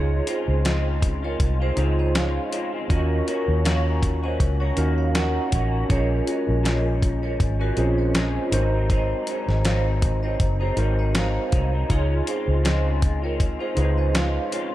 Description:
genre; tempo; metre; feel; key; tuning
indie pop, bedroom pop; 80 BPM; 4/4; swing 55% on 16ths; Db major; A4 = 441 Hz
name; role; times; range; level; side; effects
vibraphone with medium mallets; second line; 0.0-14.7 s; Gb4 to Gb5; -30 LUFS; right 4 dB; analog chorus, tape echo
electric guitar through a small old amp; accompaniment; 0.0-14.7 s; Ab2 to Gb4; -29 LUFS; left 3 dB; ensemble chorus, vibrato effect
tine electric piano; accompaniment; 0.0-14.7 s; C4 to Db5; -29 LUFS; right 2 dB; none
vintage muted fingered electric bass; bass; 0.0-14.4 s; Gb1 to Eb2; -22 LUFS; equal; none
dusty soul sampler-style drum kit; drums; 0.3-14.7 s; hi-hat, kick drum, snare drum; -24 LUFS; equal; none
room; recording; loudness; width
little or no reverb; dark, warm production; -20 LUFS; side -14 dB against mid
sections
0.0-14.7 A section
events
none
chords
0.0 Dbmaj7; 2.9 Ebm7; 5.9 Bbm7; 8.5 Ab7; 11.9 Dbmaj7

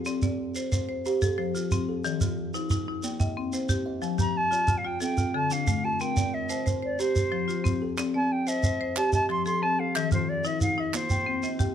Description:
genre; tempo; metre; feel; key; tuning
southern african traditional, mbira-style interlocking cycle; 121 BPM (dotted quarters); 12/8; straight; C equiheptatonic; A4 = 442 Hz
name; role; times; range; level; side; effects
kalimba; arpeggios; 0.0-11.7 s; D3-29c to Bb5+29c; -32 LUFS; right 4 dB; none
marimba with hard mallets; arpeggios; 0.0-11.7 s; D3-29c to G5; -30 LUFS; left 7 dB; none
shekere; percussion; 0.1-11.7 s; none; -29 LUFS; right 2 dB; none
silver concert flute; melody; 4.2-11.6 s; C5 to C6; -28 LUFS; equal; none
group handclap; percussion; 8.0-11.1 s; none; -35 LUFS; right 6 dB; none
room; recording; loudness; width
light reverb; close, detailed microphones; -24 LUFS; side -9 dB against mid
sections
0.0-8.0 A section; 8.0-11.7 B section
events
none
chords
0.1 Csus2; 1.0 F; 2.0 F7/Eb; 3.0 Cm; 4.0 F; 5.0 Dm; 6.0 Cm; 7.0 F; 8.0 Cm; 9.0 F; 9.9 F7/Eb; 10.9 Cm

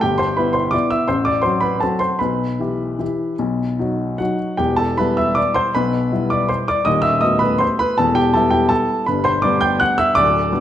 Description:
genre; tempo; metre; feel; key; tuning
classical, piano waltz; 146-179 BPM; 3/4; rubato; E minor; A4 = 440 Hz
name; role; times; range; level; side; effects
warm upright piano; solo; 0.0-10.6 s; D1 to G6; -16 LUFS; equal; none
room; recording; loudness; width
wet recital hall reverb, RT60 1.4 s; none; -16 LUFS; side -11 dB against mid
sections
0.0-4.6 A section; 4.6-10.6 B section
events
none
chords
0.0 Em/G; 1.1 F#dim/A; 2.2 Em/B; 3.4 B; 4.6 Em; 6.9 B7/D#; 8.0 Em; 9.1 G

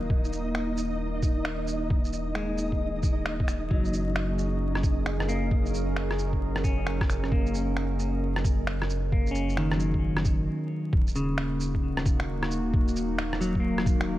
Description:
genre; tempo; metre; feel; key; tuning
future garage; 133 BPM; 4/4; swing 63% on 16ths; Eb minor; A4 = 439 Hz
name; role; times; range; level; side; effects
semi-hollow electric guitar; accompaniment; 0.0-14.2 s; Db3 to Db4; -32 LUFS; left 1 dB; sidechain pumping, tape echo
warbly tape-like pad; sustained chords; 0.0-14.2 s; Eb3 to Bb4; -33 LUFS; right 1 dB; chorus, built-in reverb, vintage 12-bit sampler grit, sidechain pumping
warm sub bass; bass; 0.0-14.2 s; Eb1 to Gb1; -31 LUFS; equal; sidechain pumping
flickering grainy texture; texture; 0.0-10.5 s; Eb4 to Eb5; -38 LUFS; left 1 dB; built-in reverb
electronic kick drum; drums; 0.1-14.0 s; none; -26 LUFS; equal; vintage 12-bit sampler grit
electronic shaker, finger snaps and rim click; drums; 0.2-14.1 s; none; -34 LUFS; equal; vintage 12-bit sampler grit
room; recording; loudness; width
light reverb; vinyl crackle; -25 LUFS; side -15 dB against mid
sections
0.0-10.9 A section; 10.9-14.2 B section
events
break 10.5-10.9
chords
0.0 Eb5; 3.7 Gbadd9; 10.9 Ebm7

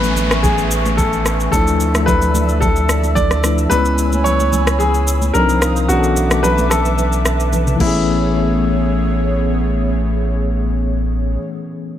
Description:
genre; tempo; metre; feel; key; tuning
amapiano; 110 BPM; 4/4; straight; A major; A4 = 440 Hz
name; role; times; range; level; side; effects
clear baby grand piano; melody; 0.0-11.4 s; E4 to D5; -20 LUFS; left 1 dB; digital delay
tine electric piano; accompaniment; 0.0-12.0 s; E3 to G#5; -20 LUFS; left 3 dB; medium stereo tremolo
airy breathy pad; sustained chords; 0.0-11.4 s; A3 to E6; -23 LUFS; right 1 dB; chorus, sidechain pumping
punchy sub bass; bass; 0.0-11.4 s; A1 to D2; -18 LUFS; equal; none
smooth R&B drum kit; drums; 0.0-7.9 s; crash cymbal, kick drum, rim click, shaker, toms; -20 LUFS; equal; none
congas; percussion; 0.0-8.3 s; none; -26 LUFS; right 4 dB; none
downlifter; sound effects; 0.0-3.7 s; none; -27 LUFS; equal; none
room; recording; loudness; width
light reverb, digital ambience; none; -13 LUFS; side -11 dB against mid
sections
0.0-8.1 A section; 8.1-12.0 B section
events
drum fill 7.5-8.1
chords
0.0 Amaj9; 1.5 Dmadd9; 3.7 C#m7; 5.3 Cm11; 5.9 Bm11; 7.8 Amaj9

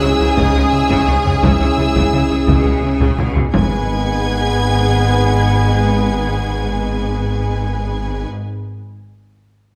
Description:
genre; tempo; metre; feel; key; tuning
cinematic, hybrid orchestral and electronic film score; 57 BPM (dotted quarters); 6/8; straight; G# minor; A4 = 436 Hz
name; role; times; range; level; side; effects
warm symphonic violin section; melody; 0.0-8.3 s; D#6 to G#6; -29 LUFS; equal; none
warm symphonic violin section; second line; 0.0-8.3 s; G#4 to G#5; -24 LUFS; equal; none
rich studio viola section; accompaniment; 0.0-8.3 s; C#3 to G#4; -27 LUFS; equal; none
warm French horn section; sustained chords; 0.0-8.3 s; G#3 to E4; -30 LUFS; equal; none
warm trombone section; sustained chords; 0.0-8.3 s; G#2 to C#4; -25 LUFS; equal; none
glassy wavetable pluck; arpeggios; 0.0-3.5 s; C#3 to C#4; -26 LUFS; equal; none
rubbery square bass; riff; 0.0-3.5 s; C#2 to C#3; -23 LUFS; equal; none
clear symphonic cello section; bass; 0.0-8.3 s; G#2 to C#3; -24 LUFS; equal; none
sub bass with octave; bass; 0.0-8.3 s; G#1 to C#2; -25 LUFS; equal; none
warm symphonic double bass section; bass; 0.0-8.3 s; G#1 to C#2; -25 LUFS; equal; none
taiko ensemble; drums; 0.4-4.9 s; none; -22 LUFS; equal; none
room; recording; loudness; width
wet scoring stage reverb, RT60 1.4 s; none; -16 LUFS; mono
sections
0.0-3.5 A section; 3.5-7.7 B section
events
drum fill 3.0-3.5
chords
0.0 C#m; 3.5 G#m

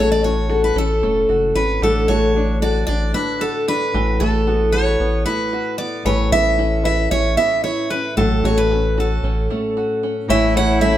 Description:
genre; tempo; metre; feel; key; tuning
acoustic folk duo or small band; 113 BPM; 4/4; straight; A major; A4 = 440 Hz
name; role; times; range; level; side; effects
picked steel-string acoustic guitar; melody; 0.0-11.0 s; A4 to F#5; -19 LUFS; right 1 dB; none
nylon-string guitar; accompaniment; 0.0-11.0 s; A2 to C#5; -22 LUFS; left 2 dB; none
open-back banjo; arpeggios; 0.0-11.0 s; D3 to F#4; -26 LUFS; right 2 dB; none
round analog bass; bass; 0.0-11.0 s; E1 to A1; -21 LUFS; equal; none
warm cello; second line; 10.3-11.0 s; E4; -22 LUFS; right 2 dB; none
room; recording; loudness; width
wet stone room reverb, RT60 1.1 s; band playing live in one room; -16 LUFS; side -12 dB against mid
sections
0.0-10.3 A section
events
none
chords
0.0 F#m/A; 1.8 D/A; 3.9 Esus2/A; 6.1 Aadd9; 8.2 F#m/A; 10.3 A

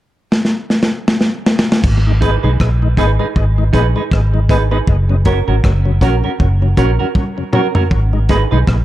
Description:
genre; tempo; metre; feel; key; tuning
roots reggae; 79 BPM; 4/4; swing 57% on 16ths; G# minor; A4 = 442 Hz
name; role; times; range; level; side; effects
crunchy breakbeat drum kit; drums; 0.3-8.8 s; crash cymbal, hi-hat, kick drum, rim click, snare drum, toms; -15 LUFS; equal; dub echo
vintage muted fingered electric bass; bass; 1.8-8.8 s; F#1 to B1; -13 LUFS; equal; none
tonewheel organ; accompaniment; 2.1-8.6 s; F#2 to D#4; -22 LUFS; left 4 dB; chorus vibrato, dub echo
clean electric guitar; accompaniment; 2.2-8.6 s; C#4 to B4; -19 LUFS; right 6 dB; spring reverb, dub echo
room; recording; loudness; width
small room reverb; dark, warm production; -12 LUFS; side -14 dB against mid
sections
0.0-1.8 A section; 1.8-7.9 B section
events
drum fill 0.3-1.8, 7.2-7.9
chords
0.0 N.C.; 1.8 G#m; 4.9 F#; 7.9 G#m

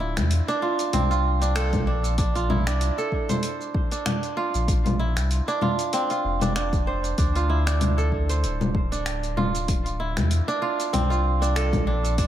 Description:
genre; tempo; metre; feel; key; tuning
organic downtempo; 96 BPM; 4/4; swing 55% on 16ths; D minor; A4 = 439 Hz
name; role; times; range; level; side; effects
kora; arpeggios; 0.0-12.3 s; C4 to C5; -26 LUFS; right 3 dB; diffuse ambient delay
warm sub bass; bass; 0.0-12.3 s; D1 to E2; -24 LUFS; equal; sidechain pumping
deep house drum kit; drums; 0.2-12.3 s; congas, finger snaps, hi-hat, shaker; -28 LUFS; left 1 dB; none
electronic kick drum; drums; 1.7-12.3 s; none; -25 LUFS; equal; none
room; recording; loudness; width
light reverb; none; -21 LUFS; side -11 dB against mid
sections
0.0-12.3 A section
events
none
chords
0.0 Dm7; 2.2 Bbmaj9#11; 7.2 Dm7

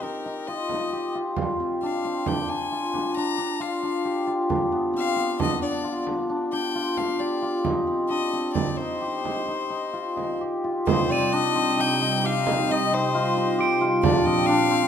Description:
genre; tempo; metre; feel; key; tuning
contemporary instrumental, chamber music in an uneven meter; 133 BPM; 7/4; straight; C minor; A4 = 440 Hz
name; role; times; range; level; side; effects
clear violin; melody; 0.0-14.9 s; Bb4 to Bb5; -28 LUFS; left 6 dB; none
cimbalom; arpeggios; 0.0-14.9 s; B3 to G4; -24 LUFS; left 1 dB; none
frame drum; percussion; 0.7-14.2 s; none; -28 LUFS; right 8 dB; none
warm analog pad; sustained chords; 10.9-14.9 s; Bb2 to Eb4; -28 LUFS; right 4 dB; chorus
crotales; texture; 11.1-14.2 s; D7 to Eb7; -31 LUFS; right 6 dB; none
room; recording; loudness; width
moderate concert hall reverb, RT60 2.1 s; close, detailed microphones; -22 LUFS; side -8 dB against mid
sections
0.0-10.9 A section; 10.9-14.9 B section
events
none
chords
0.0 Cm7; 1.4 Bb7 (rootless); 4.5 G7; 7.6 Cm; 14.0 Bb

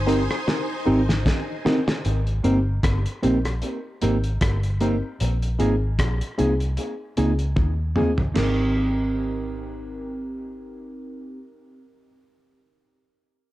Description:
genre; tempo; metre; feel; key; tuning
lovers rock reggae; 76 BPM; 4/4; swing 55% on 16ths; Ab major; A4 = 440 Hz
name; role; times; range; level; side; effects
string machine, violins; second line; 0.0-2.0 s; Eb4 to Ab5; -30 LUFS; equal; ensemble chorus
vintage muted fingered electric bass; bass; 0.0-11.4 s; G1 to Eb2; -24 LUFS; equal; none
mellow FM electric piano; accompaniment; 0.1-11.4 s; C4 to Bb4; -28 LUFS; left 2 dB; chorus, dub echo
mellow electric guitar; stabs; 0.1-11.9 s; Bb3 to Bb4; -26 LUFS; right 3 dB; dub echo
cloth-damped thuddy drum kit; drums; 0.1-8.6 s; crash cymbal, hi-hat, kick drum, rim click, snare drum, toms; -26 LUFS; equal; none
room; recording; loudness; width
small room ambience; dark, warm production; -20 LUFS; side -16 dB against mid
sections
0.0-2.0 A section; 2.0-8.4 B section; 8.4-11.5 C section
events
drum fill 0.5-2.0, 7.6-8.4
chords
0.0 Abmaj9; 5.2 Bb7sus4; 8.4 Abmaj9

